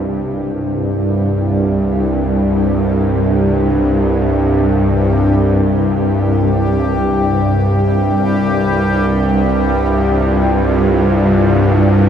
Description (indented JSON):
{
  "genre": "dark ambient drone",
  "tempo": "free time",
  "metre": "none",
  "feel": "none",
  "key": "unclear",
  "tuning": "A4 = 443 Hz",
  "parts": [
    { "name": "bowed-like drone", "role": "drone", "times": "0.0-12.1 s", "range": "C2 to G2", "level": "-12 LUFS", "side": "equal", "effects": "built-in reverb" },
    { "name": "bubbling stepped-filter texture", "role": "texture", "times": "0.0-12.1 s", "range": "G3 to G4", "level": "-22 LUFS", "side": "left 1 dB", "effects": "chorus, built-in reverb" }
  ],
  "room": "wet huge ambient reverb, RT60 8.8 s",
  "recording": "in a vast, echoing space",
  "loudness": "-12 LUFS",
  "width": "side -8 dB against mid",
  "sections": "0.1-12.1 A section",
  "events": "none",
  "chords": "0.1 C5",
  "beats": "free time"
}